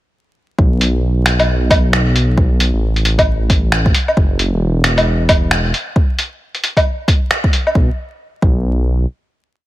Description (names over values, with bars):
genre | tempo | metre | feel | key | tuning
future garage | 134 BPM | 4/4 | swing 61% on 16ths | unclear | A4 = 441 Hz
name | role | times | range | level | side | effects
dark detuned saw bass | bass | 0.6-9.1 s | E1 to B1 | -15 LUFS | equal | sidechain pumping
electronic kick drum | drums | 0.6-8.6 s | none | -14 LUFS | equal | overdrive
lo-fi sampler-style drum kit | drums | 0.8-7.7 s | finger snaps, hi-hat, woodblock | -16 LUFS | equal | none
room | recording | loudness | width
little or no reverb | vinyl crackle | -12 LUFS | side -16 dB against mid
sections
0.6-7.8 groove; 7.8-9.7 final note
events
none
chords
none